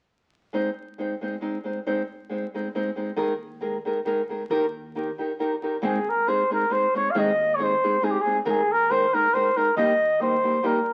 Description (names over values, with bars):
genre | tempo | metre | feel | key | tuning
mexican folk, mariachi | 137 BPM | 3/4 | swing 53% on 8ths | Ab major | A4 = 440 Hz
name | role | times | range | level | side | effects
nylon-string guitar | accompaniment | 0.5-10.8 s | Ab2 to C5 | -29 LUFS | equal | none
upright bass | bass | 3.2-10.3 s | Ab1 to Eb2 | -44 LUFS | equal | none
warm flugelhorn | melody | 5.8-10.9 s | G4 to F5 | -23 LUFS | equal | none
room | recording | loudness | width
moderate studio reverb, RT60 1.0 s | very old 78 rpm record, vinyl crackle | -24 LUFS | mono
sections
0.6-5.8 A section; 5.8-10.9 B section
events
none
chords
0.6 Ab; 3.2 Ebsus4; 4.5 Eb; 5.8 Ab; 8.5 Ebsus4; 9.8 Eb